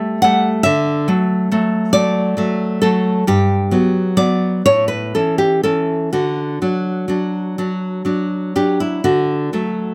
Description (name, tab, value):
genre	romantic piece for solo classical guitar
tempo	40-47 BPM (dotted quarters)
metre	6/8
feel	rubato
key	D major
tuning	A4 = 440 Hz
part	nylon-string guitar	solo	0.0-9.9 s	G2 to F#5	-17 LUFS	equal	none
room	light reverb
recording	close, detailed microphones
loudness	-17 LUFS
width	mono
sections	0.0-9.0 A section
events	none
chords	0.0 A7(no3); 0.6 D; 3.3 Gmaj7; 4.7 A; 6.1 D